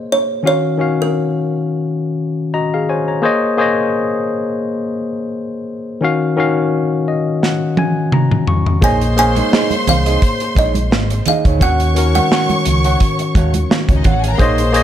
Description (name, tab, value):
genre	lush 1970s-style soul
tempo	86 BPM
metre	4/4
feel	swing 54% on 16ths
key	unclear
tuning	A4 = 441 Hz
part	kalimba	melody	0.0-1.7, 8.8-12.8 s	Bb4 to Ab5	-19 LUFS	right 2 dB	none
part	tine electric piano	accompaniment	0.0-14.8 s	Eb3 to Db6	-17 LUFS	left 3 dB	none
part	modern studio drum kit	drums	7.4-14.8 s	hi-hat, kick drum, snare drum, toms	-16 LUFS	equal	none
part	warm studio violin section	second line	8.8-14.8 s	Db4 to Db6	-22 LUFS	equal	tape echo
part	electric guitar through a small old amp	riff	8.8-14.8 s	Eb4 to Gb5	-23 LUFS	right 6 dB	none
part	fingered electric bass	bass	8.8-14.8 s	Ab1 to Eb2	-17 LUFS	equal	none
part	congas	percussion	8.8-14.7 s	none	-23 LUFS	right 6 dB	none
room	light reverb, studio ambience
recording	none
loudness	-13 LUFS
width	side -10 dB against mid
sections	0.0-14.8 A section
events	tine electric piano fill 2.2-3.2, 6.7-8.8; drum fill 7.4-8.8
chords	0.5 Ebm9; 3.2 Bbm11; 6.0 Ebm9; 8.8 Bbm11; 11.6 Ebm9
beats	| 0.45 1.15 1.85 2.54 | 3.24 3.94 4.64 5.33 | 6.03 6.73 7.43 8.12 | 8.82 9.52 10.22 10.91 | 11.61 12.31 13.00 13.70 | 14.39